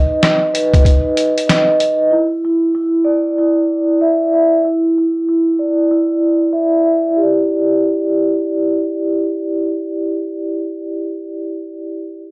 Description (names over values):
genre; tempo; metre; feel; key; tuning
hip hop, boom-bap hip-hop; 95 BPM; 4/4; swing 62% on 16ths; E minor; A4 = 440 Hz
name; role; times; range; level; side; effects
vibraphone with soft mallets; accompaniment; 0.0-12.2 s; D#4 to E5; -14 LUFS; equal; cassette tape, high-pass filter, low-pass filter
trip hop sampler-style drum kit; drums; 0.2-2.0 s; hi-hat, kick drum, rim click, snare drum; -13 LUFS; equal; none
room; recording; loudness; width
light reverb; dry, gritty hardware recording, cassette tape; -13 LUFS; side -23 dB against mid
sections
0.0-7.2 A section; 7.2-9.7 B section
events
filter sweep on vibraphone 0.0-7.2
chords
0.0 B; 2.1 Dsus2/E; 7.2 Em7